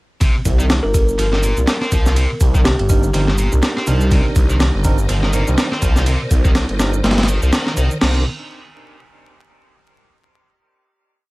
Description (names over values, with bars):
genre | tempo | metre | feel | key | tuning
breakbeat, breaks | 123 BPM | 4/4 | swing 57% on 16ths | C minor | A4 = 436 Hz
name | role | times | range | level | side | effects
high-gain distorted guitar | riff | 0.2-8.2 s | Bb2 to C4 | -26 LUFS | equal | distortion, dub echo
breakbeat sampler-style drum kit | drums | 0.2-8.1 s | crash cymbal, kick drum, ride cymbal, snare drum | -17 LUFS | equal | none
shaker | drums | 0.2-8.0 s | none | -32 LUFS | right 1 dB | none
phased detuned saw bass | bass | 0.5-8.2 s | G1 to C2 | -17 LUFS | equal | phaser
kalimba | melody | 0.8-2.9 s | G4 to Bb4 | -25 LUFS | equal | telephone sound, dub echo
tine electric piano | stabs | 2.9-8.2 s | C4 to Bb4 | -26 LUFS | right 3 dB | medium stereo tremolo, dub echo
tonewheel organ | sustained chords | 4.1-8.2 s | Eb3 to D5 | -28 LUFS | equal | overdrive, chorus vibrato, fast rotary speaker, vintage 12-bit sampler grit, sidechain pumping
room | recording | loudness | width
little or no reverb | vinyl crackle | -14 LUFS | side -22 dB against mid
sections
0.2-8.0 groove; 8.0-10.0 final chord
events
none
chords
0.2 Cm9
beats
| 0.21 0.70 1.19 1.68 | 2.16 2.65 3.14 3.63 | 4.11 4.60 5.09 5.58 | 6.07 6.55 7.04 7.53 | 8.02